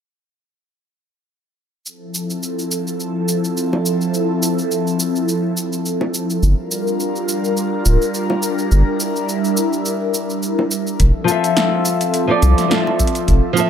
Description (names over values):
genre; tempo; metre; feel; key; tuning
sunset chillout; 105 BPM; 4/4; swing 55% on 16ths; unclear; A4 = 440 Hz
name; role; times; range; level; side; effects
airy breathy pad; sustained chords; 1.9-13.7 s; F3 to E5; -19 LUFS; equal; chorus, phaser
deep house drum kit; drums; 1.9-13.7 s; cabasa, hi-hat, snare drum; -23 LUFS; equal; overdrive
bongos; percussion; 3.7-13.0 s; none; -23 LUFS; equal; none
round analog bass; bass; 6.4-13.4 s; D1 to C2; -13 LUFS; equal; none
electronic kick drum; drums; 11.0-13.4 s; none; -18 LUFS; equal; overdrive
flamenco guitar; accompaniment; 11.2-13.7 s; F3 to E5; -17 LUFS; moving between left 6 dB and right 4 dB; auto-pan, low-pass filter, digital delay
room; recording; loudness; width
light reverb; none; -16 LUFS; side -8 dB against mid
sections
1.9-11.0 A section; 11.0-13.7 B section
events
break 9.9-11.0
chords
1.9 Fmaj7; 6.4 Gm7; 11.0 Fmaj7